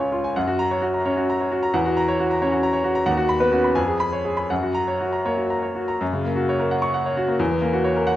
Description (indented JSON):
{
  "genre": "classical, virtuoso piano study",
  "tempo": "78-92 BPM (dotted quarters)",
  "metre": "6/8",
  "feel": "rubato",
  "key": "F# major",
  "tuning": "A4 = 440 Hz",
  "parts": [
    { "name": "bright baby grand piano", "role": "solo", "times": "0.0-8.2 s", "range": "C#2 to C#6", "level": "-19 LUFS", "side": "equal", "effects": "none" }
  ],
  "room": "moderate recital hall reverb, RT60 1.6 s",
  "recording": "worn, warbling old tape, cassette tape, warbly pitch drift",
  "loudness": "-19 LUFS",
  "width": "side -13 dB against mid",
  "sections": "0.0-6.0 A section; 6.0-8.2 A section",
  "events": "none",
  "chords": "0.4 F#; 1.7 F#7/E; 3.1 B/D#; 3.8 C#7/E#; 4.5 F#; 7.4 F#7/E"
}